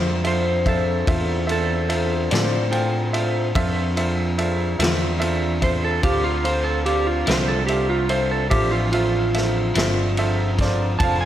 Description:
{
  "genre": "slow blues",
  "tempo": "48 BPM (dotted quarters)",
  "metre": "12/8",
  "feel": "straight",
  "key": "D minor",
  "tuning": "A4 = 440 Hz",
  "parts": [
    { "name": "electric slide guitar", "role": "second line", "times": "0.0-11.3 s", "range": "F4 to A5", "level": "-24 LUFS", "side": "right 2 dB", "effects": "slapback echo" },
    { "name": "clean electric guitar", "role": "accompaniment", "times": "0.0-10.0 s", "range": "D3 to E4", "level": "-29 LUFS", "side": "left 4 dB", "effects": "tremolo, slapback echo" },
    { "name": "clear upright piano", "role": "accompaniment", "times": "0.0-11.3 s", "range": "F4 to G5", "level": "-26 LUFS", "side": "right 2 dB", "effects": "slapback echo" },
    { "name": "mellow tonewheel organ", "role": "sustained chords", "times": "0.0-11.3 s", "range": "F3 to C5", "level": "-29 LUFS", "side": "left 2 dB", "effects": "slow rotary speaker" },
    { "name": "mellow fretless electric bass", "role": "bass", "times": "0.0-11.3 s", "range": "F1 to A2", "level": "-23 LUFS", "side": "equal", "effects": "ensemble chorus" },
    { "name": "vintage drum kit", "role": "drums", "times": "0.2-11.2 s", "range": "kick drum, ride cymbal, snare drum", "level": "-25 LUFS", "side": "equal", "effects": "none" }
  ],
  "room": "moderate concert hall reverb, RT60 2.1 s",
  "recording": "big arena sound",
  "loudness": "-18 LUFS",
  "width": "side -11 dB against mid",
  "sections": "0.0-11.3 A section",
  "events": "electric slide guitar solo 0.0-11.3",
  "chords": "0.0 Dm9"
}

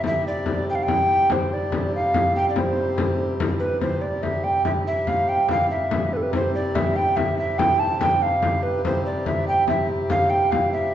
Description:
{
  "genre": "medieval dance",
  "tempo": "95 BPM (dotted quarters)",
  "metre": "6/8",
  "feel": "straight",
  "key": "C major",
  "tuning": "A4 = 440 Hz",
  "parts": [
    { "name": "hand-pumped harmonium", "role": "drone", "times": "0.0-10.9 s", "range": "C3 to G3", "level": "-28 LUFS", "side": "equal", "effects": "none" },
    { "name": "frame drum", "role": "percussion", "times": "0.0-10.7 s", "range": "none", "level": "-25 LUFS", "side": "left 2 dB", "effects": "none" },
    { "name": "mellow hollow tenor recorder", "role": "melody", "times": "0.1-10.9 s", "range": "A4 to A5", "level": "-22 LUFS", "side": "right 1 dB", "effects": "none" }
  ],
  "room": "wet recital hall reverb, RT60 1.6 s",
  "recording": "recorded in a church or concert hall, nothing above 7.9 kHz",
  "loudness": "-19 LUFS",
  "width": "side -10 dB against mid",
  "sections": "0.0-3.8 A section; 3.8-10.9 B section",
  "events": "none",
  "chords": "none"
}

